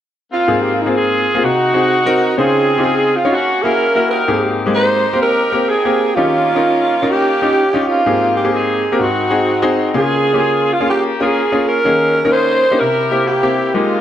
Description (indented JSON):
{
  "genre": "gospel",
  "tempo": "127 BPM",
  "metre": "4/4",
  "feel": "swing 65% on 8ths",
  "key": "Ab major",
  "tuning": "A4 = 441 Hz",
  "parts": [
    { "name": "breathy alto saxophone", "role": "melody", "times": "0.3-14.0 s", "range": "Eb4 to C5", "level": "-16 LUFS", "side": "right 3 dB", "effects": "none" },
    { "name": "bright saxophone section", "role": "melody", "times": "0.3-14.0 s", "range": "Ab3 to G5", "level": "-18 LUFS", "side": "left 2 dB", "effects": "none" },
    { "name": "clear grand piano", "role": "accompaniment", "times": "0.5-14.0 s", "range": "Ab2 to Db5", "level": "-16 LUFS", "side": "left 2 dB", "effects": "none" }
  ],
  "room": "moderate recital hall reverb, RT60 1.8 s, small room ambience",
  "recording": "none",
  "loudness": "-12 LUFS",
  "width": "side -10 dB against mid",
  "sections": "0.5-14.0 A section",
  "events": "none",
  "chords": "0.5 Ab69; 1.4 Ab7/C; 2.4 Dbmaj9; 3.3 Gb9; 4.3 Abmaj9; 6.2 Eb9; 8.1 Abmaj9; 9.0 Ab7; 9.9 Db6; 11.8 Eb7sus4; 12.8 C7"
}